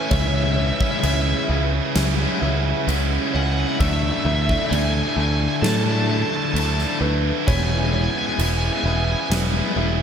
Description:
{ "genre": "post-rock", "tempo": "65 BPM", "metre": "4/4", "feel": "straight", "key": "unclear", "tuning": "A4 = 440 Hz", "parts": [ { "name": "bluesy overdriven lead guitar", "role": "melody", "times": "0.0-9.3 s", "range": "E5 to A5", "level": "-27 LUFS", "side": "left 1 dB", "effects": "distortion, tape echo" }, { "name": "hollow soft pad", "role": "sustained chords", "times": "0.0-10.0 s", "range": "C#4 to G#5", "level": "-34 LUFS", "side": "equal", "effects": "none" }, { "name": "felt-muted upright piano", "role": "arpeggios", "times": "0.0-10.0 s", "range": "A4 to E5", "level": "-32 LUFS", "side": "right 4 dB", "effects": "slapback echo, tape echo" }, { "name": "cranked stack guitar", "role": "riff", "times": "0.0-10.0 s", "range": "C#3 to E4", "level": "-27 LUFS", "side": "left 11 dB", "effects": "overdrive, tremolo" }, { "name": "tight distorted guitar", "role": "riff", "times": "0.0-10.0 s", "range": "C#3 to E4", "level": "-26 LUFS", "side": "right 11 dB", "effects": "distortion" }, { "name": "picked electric bass", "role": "bass", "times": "0.1-10.0 s", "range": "E1 to A2", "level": "-22 LUFS", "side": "equal", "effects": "none" }, { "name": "huge arena drum kit", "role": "drums", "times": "0.1-9.5 s", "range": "crash cymbal, kick drum, snare drum", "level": "-26 LUFS", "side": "equal", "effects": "none" } ], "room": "light reverb", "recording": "none", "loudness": "-18 LUFS", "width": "side -8 dB against mid", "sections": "0.0-10.0 A section", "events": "none", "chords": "0.1 C#m7; 3.8 Dsus2; 7.5 E6" }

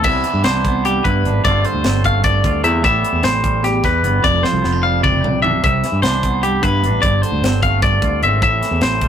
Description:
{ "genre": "math rock and midwest emo", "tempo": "301 BPM (eighths)", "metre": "7/8", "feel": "straight", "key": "C major", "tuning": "A4 = 440 Hz", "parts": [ { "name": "twangy electric guitar", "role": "accompaniment", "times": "0.0-9.1 s", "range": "E2 to G4", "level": "-22 LUFS", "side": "right 5 dB", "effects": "harmonic tremolo" }, { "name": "twangy electric guitar", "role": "arpeggios", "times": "0.0-9.1 s", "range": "G4 to F5", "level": "-17 LUFS", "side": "left 3 dB", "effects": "none" }, { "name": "fingered electric bass", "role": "bass", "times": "0.0-9.1 s", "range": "F1 to G2", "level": "-19 LUFS", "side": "equal", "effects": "none" }, { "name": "crisp fusion drum kit", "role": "drums", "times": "0.0-9.1 s", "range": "crash cymbal, hi-hat, kick drum, snare drum, toms", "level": "-21 LUFS", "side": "equal", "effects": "none" } ], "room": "moderate studio ambience, RT60 0.5 s", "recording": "rough rehearsal-room recording, tube saturation", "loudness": "-13 LUFS", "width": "side -9 dB against mid", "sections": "0.0-9.1 A section", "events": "drum fill 4.4-5.6", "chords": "0.0 Cmaj9; 1.4 G9sus4; 2.8 Am9; 4.2 Fsus2; 5.6 Cmaj9; 7.0 G9sus4; 8.4 Am" }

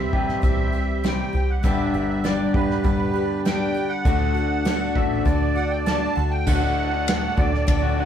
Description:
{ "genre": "folk rock and heartland rock", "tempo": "99 BPM", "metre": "4/4", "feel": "straight", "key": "unclear", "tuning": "A4 = 440 Hz", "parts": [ { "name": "musette accordion", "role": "melody", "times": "0.0-8.1 s", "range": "B4 to A5", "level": "-28 LUFS", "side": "right 4 dB", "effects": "none" }, { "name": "picked twelve-string acoustic guitar", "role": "accompaniment", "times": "0.0-8.1 s", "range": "G2 to G4", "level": "-28 LUFS", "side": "left 4 dB", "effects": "none" }, { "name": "accordion", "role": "sustained chords", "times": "0.0-8.1 s", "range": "F#3 to C6", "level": "-36 LUFS", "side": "equal", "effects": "none" }, { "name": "electric guitar through a small old amp", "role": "riff", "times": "0.0-8.1 s", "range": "G2 to G4", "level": "-26 LUFS", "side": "left 1 dB", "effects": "none" }, { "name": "deep dub picked electric bass", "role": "bass", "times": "0.0-8.1 s", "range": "G1 to G2", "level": "-26 LUFS", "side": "equal", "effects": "none" }, { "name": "soft brush drum kit", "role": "drums", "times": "0.1-7.8 s", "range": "crash cymbal, hi-hat, kick drum, ride cymbal, snare drum", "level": "-24 LUFS", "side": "equal", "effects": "none" } ], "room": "moderate studio reverb, RT60 0.6 s", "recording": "band playing live in one room", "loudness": "-19 LUFS", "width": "side -9 dB against mid", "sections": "0.0-6.5 A section; 6.5-8.1 B section", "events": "none", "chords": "0.0 C; 1.6 G; 4.1 D" }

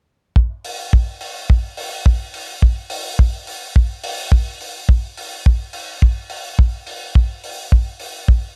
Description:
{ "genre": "nu-disco", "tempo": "106 BPM", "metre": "4/4", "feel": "straight", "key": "none", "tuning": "none", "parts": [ { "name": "kick drum", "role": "drums", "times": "0.4-8.4 s", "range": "none", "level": "-15 LUFS", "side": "equal", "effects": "none" }, { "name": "hi-hat", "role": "drums", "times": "0.6-8.1 s", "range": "none", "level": "-32 LUFS", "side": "equal", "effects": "none" } ], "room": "little or no reverb", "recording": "dark, warm production", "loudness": "-19 LUFS", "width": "mono", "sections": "0.4-8.6 A section", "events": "none", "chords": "none" }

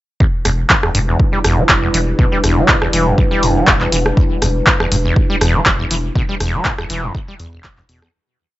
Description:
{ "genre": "acid house", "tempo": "121 BPM", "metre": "4/4", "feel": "swing 54% on 16ths", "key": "E minor", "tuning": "A4 = 444 Hz", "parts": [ { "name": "dark analog pad", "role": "sustained chords", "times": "0.9-8.1 s", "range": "G3 to B4", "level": "-22 LUFS", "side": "equal", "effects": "chorus, phaser, sidechain pumping" }, { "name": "acid bass, saw", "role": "riff", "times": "0.2-8.1 s", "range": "E1 to G3", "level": "-18 LUFS", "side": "equal", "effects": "overdrive, lush chorus, analog delay" }, { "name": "electronic kick drum", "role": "drums", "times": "0.2-7.8 s", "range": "none", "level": "-16 LUFS", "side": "equal", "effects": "none" }, { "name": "saturated sub bass", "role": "bass", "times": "0.5-8.1 s", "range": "E1 to E2", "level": "-20 LUFS", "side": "equal", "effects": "tube saturation, sidechain pumping" }, { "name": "punchy analog drum machine", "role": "drums", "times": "0.5-8.1 s", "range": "handclaps, hi-hat, rim click", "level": "-15 LUFS", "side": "equal", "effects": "none" } ], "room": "little or no reverb", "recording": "dry, gritty hardware recording, nothing above 7.8 kHz", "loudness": "-12 LUFS", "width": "side -16 dB against mid", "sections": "0.2-8.1 groove", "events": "fade-out 5.5-8.1", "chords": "0.2 Em7" }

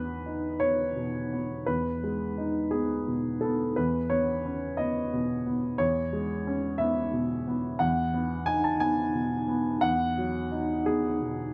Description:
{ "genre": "neoclassical minimalist piano", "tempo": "58 BPM (dotted quarters)", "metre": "6/8", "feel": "rubato", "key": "E major", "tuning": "A4 = 438 Hz", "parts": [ { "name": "warm upright piano", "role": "solo", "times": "0.0-11.5 s", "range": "E2 to A5", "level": "-29 LUFS", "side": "equal", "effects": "none" } ], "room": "moderate stone room reverb, RT60 1.4 s", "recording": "dark, warm production", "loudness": "-29 LUFS", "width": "mono", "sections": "0.0-11.5 A section", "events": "none", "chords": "0.0 Emaj7; 3.8 C#m7/E; 7.8 G#m7/E" }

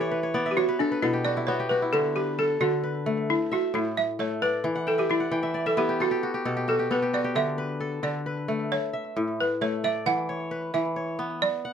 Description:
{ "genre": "west african traditional, West African string and xylophone music", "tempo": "89 BPM (dotted quarters)", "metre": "12/8", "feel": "straight", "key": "unclear", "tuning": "A4 = 440 Hz", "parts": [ { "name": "balafon", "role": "melody", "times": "0.0-11.7 s", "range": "D4 to F#5", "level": "-26 LUFS", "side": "right 1 dB", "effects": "none" }, { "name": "kora", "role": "arpeggios", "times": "0.0-11.7 s", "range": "A2 to G5", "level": "-27 LUFS", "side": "left 1 dB", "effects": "slapback echo" } ], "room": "light reverb", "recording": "close, detailed microphones", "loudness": "-24 LUFS", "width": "side -8 dB against mid", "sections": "0.0-11.7 A section", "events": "kora fill 0.0-1.9, 4.8-7.4", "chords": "0.0 Em; 0.6 N.C.; 1.9 D; 3.3 A5; 4.6 E5; 6.0 N.C.; 7.4 D5; 8.7 A; 10.1 E5" }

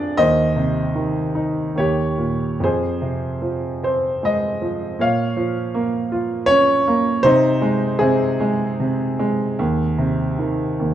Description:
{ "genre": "classical, lyrical solo piano", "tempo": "70-81 BPM", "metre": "3/4", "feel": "rubato", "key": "Ab major", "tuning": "A4 = 440 Hz", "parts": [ { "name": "clear grand piano", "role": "solo", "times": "0.0-10.9 s", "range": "Eb2 to F5", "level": "-17 LUFS", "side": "right 1 dB", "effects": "none" } ], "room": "moderate recital hall reverb, RT60 1.4 s", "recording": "dark, warm production", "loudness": "-17 LUFS", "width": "side -11 dB against mid", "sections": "0.0-10.9 A section", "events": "none", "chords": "0.2 Cm/Eb; 1.8 Eb; 2.6 Fm; 5.0 Bbm; 7.2 Ab/C; 9.6 Ab/Eb" }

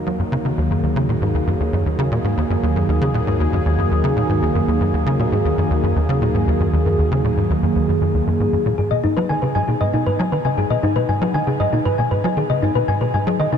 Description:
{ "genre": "ambient, sequencer-driven space music", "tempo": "117 BPM", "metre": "4/4", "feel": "straight", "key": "Eb minor, G# minor from 8.8 s", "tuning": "A4 = 440 Hz", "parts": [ { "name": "sweeping resonant pad", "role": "sustained chords", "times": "0.0-13.6 s", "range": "Eb2 to Bb4", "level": "-21 LUFS", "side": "right 1 dB", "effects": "chorus, phaser, shimmer reverb" }, { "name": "tight sequencer bass", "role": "riff", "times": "0.1-13.6 s", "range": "Eb2 to Gb3", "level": "-19 LUFS", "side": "equal", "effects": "ensemble chorus, ping-pong delay" }, { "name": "thumb-piano-like synth pluck", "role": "arpeggios", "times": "8.8-13.6 s", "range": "D#4 to G#5", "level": "-20 LUFS", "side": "moving between left 7 dB and equal", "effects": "chorus, auto-pan, ping-pong delay, shimmer reverb" }, { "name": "analog drone", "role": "bass", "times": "11.5-13.6 s", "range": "none", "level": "barely audible", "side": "none", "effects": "none" } ], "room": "moderate huge ambient reverb, RT60 7.5 s", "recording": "dark, warm production", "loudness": "-16 LUFS", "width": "side -8 dB against mid", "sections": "0.0-8.8 A section; 8.8-13.6 B section", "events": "none", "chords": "0.0 Ebm; 8.8 G#m" }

